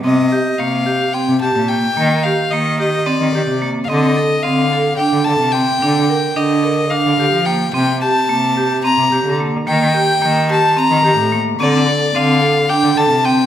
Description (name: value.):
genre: contemporary instrumental, chamber music in an uneven meter.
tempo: 218 BPM (eighths).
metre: 7/8.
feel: straight.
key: unclear.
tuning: A4 = 439 Hz.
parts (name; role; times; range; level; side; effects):
clear violin; melody; 0.0-13.5 s; D5 to Bb5; -17 LUFS; left 2 dB; none.
vibraphone with medium hard mallets; arpeggios; 0.0-13.4 s; Bb3 to Bb4; -17 LUFS; right 2 dB; none.
rich cello; bass; 0.0-13.4 s; A2 to F3; -18 LUFS; left 1 dB; none.
room: wet recital hall reverb, RT60 1.7 s.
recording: none.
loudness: -13 LUFS.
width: side -10 dB against mid.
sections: 0.0-13.5 A section.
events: none.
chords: 0.0 Cm7; 2.0 Eb6; 3.9 Dm7; 5.8 Gm7/D; 7.7 C5; 9.7 Eb; 11.6 Dm7.